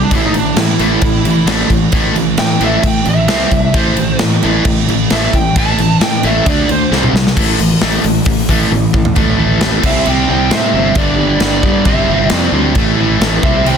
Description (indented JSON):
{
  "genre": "hard rock",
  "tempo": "133 BPM",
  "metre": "4/4",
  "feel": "straight",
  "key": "A minor",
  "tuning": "A4 = 440 Hz",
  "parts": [
    { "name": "smooth overdriven lead guitar", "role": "melody", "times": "0.0-6.9, 9.9-13.8 s", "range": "D4 to A5", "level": "-18 LUFS", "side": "right 2 dB", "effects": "none" },
    { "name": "cranked stack guitar", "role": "riff", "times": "0.0-13.8 s", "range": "G2 to D4", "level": "-17 LUFS", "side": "left 12 dB", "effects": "overdrive" },
    { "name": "sludgy distorted guitar", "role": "riff", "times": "0.0-13.8 s", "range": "G2 to D4", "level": "-17 LUFS", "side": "right 11 dB", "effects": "overdrive" },
    { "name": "fuzz fingered electric bass", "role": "bass", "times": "0.0-13.8 s", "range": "G1 to A2", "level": "-18 LUFS", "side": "equal", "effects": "overdrive" },
    { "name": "big rock drum kit", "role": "drums", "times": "0.1-13.8 s", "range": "crash cymbal, hi-hat, kick drum, snare drum, toms", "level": "-15 LUFS", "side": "equal", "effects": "none" }
  ],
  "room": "light reverb",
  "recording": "dense, heavily limited modern master",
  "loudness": "-10 LUFS",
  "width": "side -7 dB against mid",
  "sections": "0.0-7.4 A section; 7.4-9.2 B section; 9.2-13.8 C section",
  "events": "lead electric guitar solo 0.0-7.4; drum fill 6.9-7.4, 8.7-9.2",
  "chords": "0.1 A5; 3.3 C5; 3.8 A5; 6.5 D5; 6.9 C5; 7.4 A5; 9.8 C5; 11.0 G5; 11.9 C/G; 12.8 A5"
}